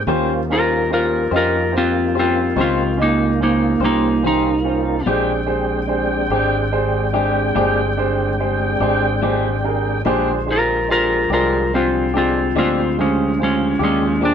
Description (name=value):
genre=slow blues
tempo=48 BPM (dotted quarters)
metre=12/8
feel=straight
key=Bb mixolydian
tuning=A4 = 440 Hz
part: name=tonewheel organ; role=sustained chords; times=0.0-14.3 s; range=D3 to G5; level=-24 LUFS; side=equal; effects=chorus vibrato, slow rotary speaker
part: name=fingered electric bass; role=bass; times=0.0-14.3 s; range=G1 to F2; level=-24 LUFS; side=equal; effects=none
part: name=clean electric guitar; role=accompaniment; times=0.1-14.3 s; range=Bb2 to C5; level=-23 LUFS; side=left 6 dB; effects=harmonic tremolo
part: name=clear upright piano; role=accompaniment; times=0.1-14.3 s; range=C4 to D6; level=-23 LUFS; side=right 4 dB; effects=none
part: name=clean lap steel guitar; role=melody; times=0.5-14.3 s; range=Ab3 to Bb4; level=-17 LUFS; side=equal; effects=none
room=light reverb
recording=band playing live in one room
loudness=-15 LUFS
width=side -8 dB against mid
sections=0.0-14.3 A section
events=electric slide guitar solo 0.0-14.3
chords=0.1 Eb13; 5.1 Bb13